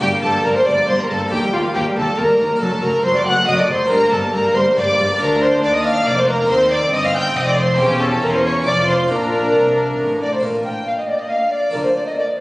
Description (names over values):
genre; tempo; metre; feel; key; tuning
classical, baroque-style concerto movement with solo episodes; 138 BPM; 3/4; straight; G minor, Bb major from 5.2 s; A4 = 438 Hz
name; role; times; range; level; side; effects
mellow hollow tenor recorder; melody; 0.0-12.4 s; F4 to Ab5; -19 LUFS; equal; none
rich chamber violin section; melody; 0.0-12.4 s; D4 to G6; -22 LUFS; equal; none
warm chamber violin section; second line; 0.0-12.3 s; F4 to G5; -20 LUFS; equal; none
harpsichord; accompaniment; 0.0-12.4 s; D2 to Bb4; -28 LUFS; equal; none
warm studio viola section; accompaniment; 0.0-12.4 s; F#3 to F4; -23 LUFS; equal; none
dark chamber cello section; bass; 0.0-12.1 s; D2 to E3; -27 LUFS; equal; none
warm studio double bass section; bass; 0.0-12.1 s; E1 to E2; -26 LUFS; equal; none
room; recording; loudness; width
moderate scoring stage reverb, RT60 2.0 s; recorded on a phone in the room, studio reverb, compression; -14 LUFS; side -20 dB against mid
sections
0.0-10.4 A section; 10.4-12.4 B section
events
none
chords
0.0 Gm; 1.3 Eb; 2.6 D/F#; 3.9 Gm; 5.2 Bb/D; 6.5 Cm; 7.8 Edim7; 8.7 F7; 9.1 Bb; 11.7 Bb/D